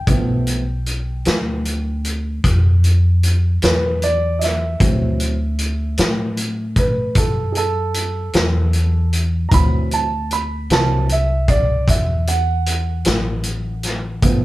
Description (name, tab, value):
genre	slow blues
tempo	51 BPM (dotted quarters)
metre	12/8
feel	straight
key	unclear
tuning	A4 = 440 Hz
part	dark baby grand piano	accompaniment	0.0-14.4 s	E3 to B5	-21 LUFS	right 3 dB	none
part	upright bass	bass	0.0-14.4 s	G1 to A2	-18 LUFS	equal	none
part	vintage drum kit	drums	0.1-14.4 s	hi-hat, kick drum, snare drum	-19 LUFS	equal	none
room	moderate studio reverb, RT60 0.6 s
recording	band playing live in one room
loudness	-16 LUFS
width	side -17 dB against mid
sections	0.0-14.4 A section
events	grand piano solo 0.0-14.4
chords	0.0 G7; 4.8 D9